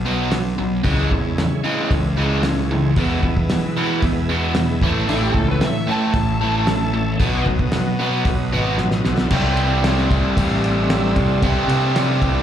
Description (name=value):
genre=classic rock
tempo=114 BPM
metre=4/4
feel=straight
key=unclear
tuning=A4 = 442 Hz
part: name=biting overdriven guitar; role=riff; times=0.0-12.4 s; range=E2 to G4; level=-20 LUFS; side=right 1 dB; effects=slapback echo
part: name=fuzz fingered electric bass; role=bass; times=0.0-12.4 s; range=G#1 to E3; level=-21 LUFS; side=equal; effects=overdrive
part: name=cloth-damped thuddy drum kit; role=drums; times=0.3-12.3 s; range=crash cymbal, hi-hat, kick drum, ride cymbal, snare drum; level=-22 LUFS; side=equal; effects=none
part: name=bright tonewheel organ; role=sustained chords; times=0.8-12.4 s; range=G#3 to E5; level=-29 LUFS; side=right 1 dB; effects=overdrive, chorus vibrato, slow rotary speaker
part: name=overdriven slide guitar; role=second line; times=5.1-7.4 s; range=E4 to A5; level=-25 LUFS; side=left 3 dB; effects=slapback echo
room=light reverb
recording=live gig heard through the venue's PA, club reverb, vinyl crackle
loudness=-16 LUFS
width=side -10 dB against mid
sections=0.0-9.3 A section; 9.3-12.4 B section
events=drum fill 8.8-9.3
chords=0.0 B5; 0.9 C#m; 3.0 E; 4.8 A; 7.2 B; 9.3 C6